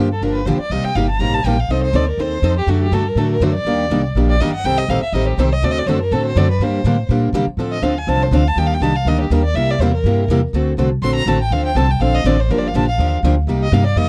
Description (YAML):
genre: acoustic string swing (jazz manouche)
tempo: 244 BPM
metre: 4/4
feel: swing 56% on 8ths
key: unclear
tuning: A4 = 443 Hz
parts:
  - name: picked acoustic archtop guitar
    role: accompaniment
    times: 0.0-14.1 s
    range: C3 to C5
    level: -22 LUFS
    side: equal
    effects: none
  - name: picked steel-string acoustic guitar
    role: accompaniment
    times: 0.0-14.1 s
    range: C3 to C5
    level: -28 LUFS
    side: equal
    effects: none
  - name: upright bass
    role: bass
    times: 0.0-14.1 s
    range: G1 to C3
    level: -20 LUFS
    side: equal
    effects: none
  - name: warm violin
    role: second line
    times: 0.1-14.1 s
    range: F#4 to C6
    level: -24 LUFS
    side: equal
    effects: slapback echo
room: little or no reverb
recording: dry, close 1970s-style studio recording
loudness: -17 LUFS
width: mono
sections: 0.0-7.6 A section; 7.6-14.1 A section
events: violin solo 0.0-14.1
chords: 0.0 Gm7; 0.7 Cm7; 1.7 Adim/C; 2.7 D; 3.7 Ebmaj7; 4.6 Am7b5; 5.6 D7; 6.6 Gm; 7.6 Dm7; 8.6 Ebmaj7; 9.6 C7; 10.5 D7b13; 11.5 Dm7; 12.5 Gm7; 13.5 Cm7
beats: 0.22 0.46 | 0.71 0.96 1.20 1.45 | 1.69 1.94 2.19 2.43 | 2.68 2.92 3.17 3.42 | 3.66 3.91 4.15 4.40 | 4.64 4.89 5.13 5.38 | 5.62 5.87 6.12 6.36 | 6.61 6.85 7.10 7.34 | 7.59 7.83 8.08 8.32 | 8.57 8.81 9.06 9.30 | 9.55 9.80 10.04 10.29 | 10.53 10.78 11.02 11.27 | 11.51 11.76 12.01 12.25 | 12.50 12.74 12.99 13.23 | 13.48 13.72 13.97